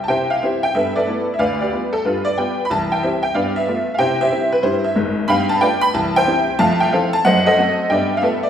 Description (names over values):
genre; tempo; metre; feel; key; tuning
jazz, stride piano; 184 BPM; 4/4; swing 65% on 8ths; C major; A4 = 443 Hz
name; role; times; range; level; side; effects
honky-tonk upright piano; solo; 0.0-8.5 s; Ab1 to B5; -15 LUFS; equal; none
room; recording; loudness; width
wet recital hall reverb, RT60 1.5 s; recorded in a church or concert hall; -15 LUFS; side -9 dB against mid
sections
0.1-8.5 A section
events
none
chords
0.1 C; 0.7 G69; 1.4 G7/D; 2.7 C; 3.3 G9; 4.0 C; 5.3 G9; 5.9 C; 6.6 Fmaj7; 7.3 F#dim7; 7.9 G13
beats
| 0.08 0.41 0.73 1.06 | 1.39 1.71 2.04 2.36 | 2.69 3.01 3.34 3.67 | 3.99 4.32 4.64 4.97 | 5.29 5.62 5.95 6.27 | 6.60 6.92 7.25 7.58 | 7.90 8.23